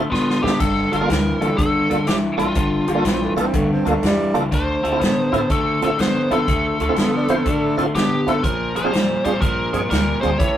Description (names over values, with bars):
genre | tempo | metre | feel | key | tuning
electric blues shuffle | 122 BPM | 4/4 | swing 66% on 8ths | D minor | A4 = 443 Hz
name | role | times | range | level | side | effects
breathy tenor saxophone | second line | 0.0, 3.1-7.9 s | G3 to F4 | -24 LUFS | right 1 dB | none
tonewheel organ | accompaniment | 0.0-10.3 s | Bb3 to C5 | -22 LUFS | right 2 dB | slow rotary speaker, overdrive, chorus vibrato
electric guitar at the edge of break-up | riff | 0.0-10.6 s | G2 to B3 | -21 LUFS | left 1 dB | none
upright bass | bass | 0.0-10.6 s | G1 to Bb2 | -29 LUFS | equal | none
biting lead guitar | melody | 0.1-10.6 s | F4 to C#5 | -23 LUFS | left 1 dB | overdrive
swinging big-band drum kit | drums | 0.1-10.5 s | crash cymbal, hi-hat, kick drum, snare drum | -23 LUFS | equal | none
room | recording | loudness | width
light reverb | rough rehearsal-room recording, tube saturation | -16 LUFS | side -11 dB against mid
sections
0.0-10.6 A section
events
drum fill 0.1-0.6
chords
0.0 Dm9; 0.6 Gm9; 4.5 Dm9; 8.4 Bb7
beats
0.11 | 0.60 1.09 1.58 2.07 | 2.56 3.05 3.54 4.03 | 4.52 5.01 5.50 5.99 | 6.48 6.97 7.46 7.95 | 8.44 8.93 9.42 9.91 | 10.40